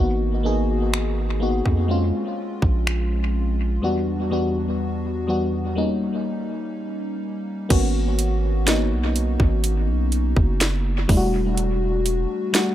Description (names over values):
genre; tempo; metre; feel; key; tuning
contemporary R&B; 62 BPM; 4/4; straight; G# minor from 7.7 s; A4 = 440 Hz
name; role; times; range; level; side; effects
FM electric piano with soft pad layer; accompaniment; 0.0-12.7 s; E2 to G#4; -23 LUFS; left 1 dB; chorus, dub echo
long sustained 808-style bass; bass; 0.0-12.3 s; E1 to E#2; -22 LUFS; equal; none
trap drum kit; drums; 0.9-12.7 s; crash cymbal, finger snaps, hi-hat, kick drum, snare drum; -22 LUFS; equal; dub echo
room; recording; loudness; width
little or no reverb; echo-heavy mix; -20 LUFS; side -12 dB against mid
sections
0.0-7.7 A section; 7.7-12.7 B section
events
break 3.8-7.7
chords
0.0 G#m9; 1.9 A#m9; 3.8 Em9; 5.8 D#7; 7.7 G#m11; 11.1 Em11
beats
0.93 1.90 2.87 | 3.83 4.80 5.77 6.74 | 7.71 8.67 9.64 10.61 | 11.58 12.54